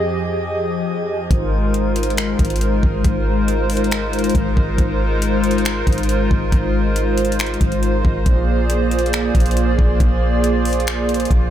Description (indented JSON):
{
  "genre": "hip hop, atmospheric cloud-rap",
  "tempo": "138 BPM",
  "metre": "4/4",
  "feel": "half-time",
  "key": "Ab lydian",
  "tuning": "A4 = 440 Hz",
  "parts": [
    { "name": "hollow soft pad", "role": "sustained chords", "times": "0.0-11.5 s", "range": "F2 to Eb5", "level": "-19 LUFS", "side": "equal", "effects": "chorus, sidechain pumping" },
    { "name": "soft 808-style bass", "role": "bass", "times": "1.3-11.5 s", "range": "Ab1 to Bb1", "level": "-19 LUFS", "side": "equal", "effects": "none" },
    { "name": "smooth R&B drum kit", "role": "drums", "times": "1.3-11.4 s", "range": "finger snaps, hi-hat, kick drum", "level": "-21 LUFS", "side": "equal", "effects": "none" }
  ],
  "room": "light reverb",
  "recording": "none",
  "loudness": "-15 LUFS",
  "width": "side -11 dB against mid",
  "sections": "0.0-1.3 A section; 1.3-11.5 B section",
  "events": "none",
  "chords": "0.0 Fm7; 1.3 Ab6; 8.3 Bb7"
}